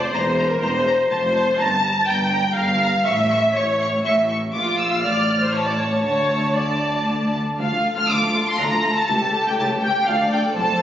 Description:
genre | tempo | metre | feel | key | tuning
quick classical-period movement for string orchestra | 121 BPM | 3/4 | straight | D minor | A4 = 440 Hz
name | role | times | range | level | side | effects
warm symphonic violin section | second line | 0.0-10.8 s | F4 to A5 | -24 LUFS | left 1 dB | none
rich symphonic viola section | accompaniment | 0.0-10.8 s | F3 to A5 | -24 LUFS | right 1 dB | none
rich symphonic cello section | bass | 0.0-10.7 s | C#2 to D3 | -27 LUFS | equal | none
rich symphonic double bass section | bass | 0.0-10.6 s | E1 to D2 | -27 LUFS | equal | none
rich symphonic violin section | melody | 0.1-10.8 s | F5 to F6 | -23 LUFS | left 1 dB | none
room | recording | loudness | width
wet scoring stage reverb, RT60 1.4 s | recorded on a phone in the room, studio reverb, nothing above 7.6 kHz | -17 LUFS | side -10 dB against mid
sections
0.0-7.6 A section; 7.6-10.8 A section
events
none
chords
0.1 C7/E; 1.1 F; 1.6 Gm; 3.1 A; 4.5 Bb; 5.0 Dm/A; 5.5 A; 6.0 D5; 7.6 Dm; 9.1 A7/C#; 10.1 Dm

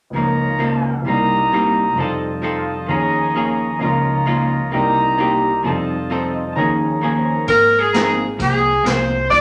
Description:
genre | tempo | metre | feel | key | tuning
jazz, big band swing | 131 BPM | 4/4 | swing 68% on 8ths | Ab major | A4 = 439 Hz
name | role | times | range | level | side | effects
archtop guitar, miked and amplified | accompaniment | 0.1-9.4 s | Ab2 to A4 | -25 LUFS | equal | none
warm grand piano | accompaniment | 0.1-8.2 s | C2 to Eb5 | -24 LUFS | equal | none
warm trumpet section | stabs | 0.2-8.1 s | F4 to Eb6 | -22 LUFS | equal | none
clear saxophone section | melody | 7.5-9.4 s | Ab4 to D5 | -16 LUFS | equal | none
upright bass | bass | 7.5-9.4 s | Ab1 to D2 | -27 LUFS | equal | none
swinging big-band drum kit | drums | 7.5-9.4 s | hi-hat, kick drum, snare drum | -26 LUFS | equal | none
room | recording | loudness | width
wet large studio reverb, RT60 0.9 s | none | -18 LUFS | mono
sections
0.1-7.5 A section; 7.5-9.4 B section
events
none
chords
0.1 Db69; 1.1 Cm7; 2.0 F7; 2.9 Eb7sus4; 3.8 Db69; 4.7 Cm7; 5.6 F7; 6.6 Eb7sus4; 7.5 Ab69

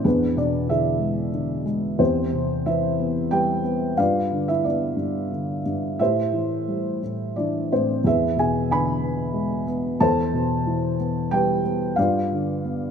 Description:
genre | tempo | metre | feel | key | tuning
classical, lyrical solo piano | 91 BPM | 3/4 | rubato | unclear | A4 = 440 Hz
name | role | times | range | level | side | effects
felt-muted upright piano | solo | 0.0-12.9 s | E2 to B5 | -20 LUFS | equal | none
room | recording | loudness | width
moderate scoring stage reverb, RT60 1.6 s | minimal, uncompressed stereo recording | -20 LUFS | side -7 dB against mid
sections
0.0-12.9 A section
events
none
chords
0.0 E7; 2.0 Cmaj7/E; 4.0 G7; 6.0 Am7; 8.0 E7; 10.0 Cmaj7/E; 12.0 G7

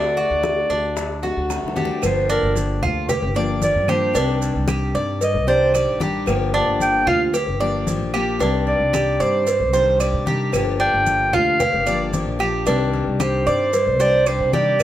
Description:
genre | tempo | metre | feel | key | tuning
latin, Cuban son and guajira | 113 BPM | 4/4 | straight | G minor | A4 = 440 Hz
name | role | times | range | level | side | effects
warm clarinet | melody | 0.0-14.8 s | Bb4 to G5 | -19 LUFS | right 1 dB | none
picked steel-string acoustic guitar | accompaniment | 0.0-14.8 s | C3 to G4 | -26 LUFS | left 4 dB | none
Cuban tres | arpeggios | 0.0-14.8 s | D4 to D5 | -23 LUFS | right 2 dB | none
upright bass | bass | 0.0-14.8 s | G1 to C3 | -25 LUFS | equal | none
bongos and cowbell | percussion | 0.2-14.8 s | none | -27 LUFS | left 2 dB | none
congas | percussion | 0.2-14.8 s | none | -28 LUFS | left 2 dB | none
maracas | percussion | 0.2-14.8 s | none | -36 LUFS | right 9 dB | none
claves | percussion | 0.4-14.8 s | none | -35 LUFS | right 8 dB | none
room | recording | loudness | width
moderate large studio reverb, RT60 1.0 s | none | -17 LUFS | side -12 dB against mid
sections
0.0-2.0 A section; 2.0-14.8 B section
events
drum fill 1.5-2.0; clarinet solo 2.0-14.8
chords
0.0 D; 2.0 Gm7; 4.2 Cmadd9; 6.3 Gm7; 8.4 Cmadd9; 10.5 Gm7; 12.7 Cmadd9

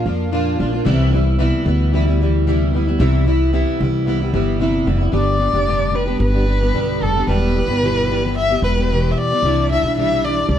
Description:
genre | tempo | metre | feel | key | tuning
acoustic pop | 112 BPM | 4/4 | straight | C major | A4 = 440 Hz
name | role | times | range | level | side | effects
fingerpicked plugged-in steel-string acoustic guitar | accompaniment | 0.0-10.6 s | E2 to G4 | -19 LUFS | equal | double-tracked left and right
upright bass | bass | 0.0-10.6 s | E1 to F2 | -18 LUFS | equal | none
dark violin | melody | 5.2-10.6 s | A4 to E5 | -19 LUFS | left 1 dB | plate reverb
room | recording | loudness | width
moderate small room reverb, RT60 0.6 s | dark, warm production | -15 LUFS | side -10 dB against mid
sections
0.0-5.1 A section; 5.1-10.6 B section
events
none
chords
0.0 Bb; 0.9 Cmaj7; 5.1 G; 7.3 Em; 9.4 Cadd9

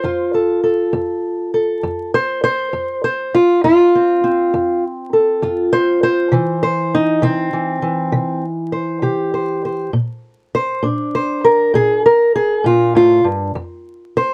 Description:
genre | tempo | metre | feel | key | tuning
acoustic country blues, solo or duo | 67 BPM (dotted quarters) | 12/8 | straight | F major | A4 = 440 Hz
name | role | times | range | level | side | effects
fingerpicked old ladder-braced acoustic guitar | solo | 0.0-14.3 s | F2 to C5 | -16 LUFS | equal | none
room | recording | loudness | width
wet booth ambience, RT60 0.2 s | vinyl crackle | -16 LUFS | mono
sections
0.0-14.3 A section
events
steel-string acoustic guitar solo 0.0-14.3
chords
0.0 F; 6.3 C; 9.9 Bb; 13.5 F5

